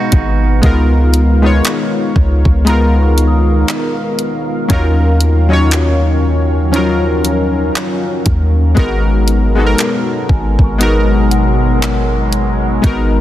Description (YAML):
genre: contemporary R&B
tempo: 59 BPM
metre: 4/4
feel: swing 58% on 16ths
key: G# dorian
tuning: A4 = 442 Hz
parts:
  - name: warm analog keys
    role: accompaniment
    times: 0.0-13.2 s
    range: E#3 to C#5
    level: -16 LUFS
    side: left 2 dB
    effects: chorus
  - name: deep dark ambient pad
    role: sustained chords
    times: 0.0-13.2 s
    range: B2 to E#5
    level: -20 LUFS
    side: right 1 dB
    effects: chorus, built-in reverb, sidechain pumping
  - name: direct-recorded clean electric guitar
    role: arpeggios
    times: 0.0-0.6 s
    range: D#4 to F#4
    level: -22 LUFS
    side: right 7 dB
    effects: digital delay
  - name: large celesta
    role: texture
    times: 0.0-13.2 s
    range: E#5 to D#6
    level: -28 LUFS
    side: left 2 dB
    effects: digital delay
  - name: warm 808-style bass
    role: bass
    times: 0.1-13.2 s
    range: G#1 to D#2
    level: -13 LUFS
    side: equal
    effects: none
  - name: smooth R&B drum kit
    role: drums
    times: 0.1-13.1 s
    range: handclaps, hi-hat, kick drum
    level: -16 LUFS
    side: equal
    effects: none
room: digital ambience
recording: dense, heavily limited modern master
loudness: -10 LUFS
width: side -13 dB against mid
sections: 0.0-13.2 A section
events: none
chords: 0.0 G#m9; 0.6 C#13; 4.7 D#m9; 8.8 G#m9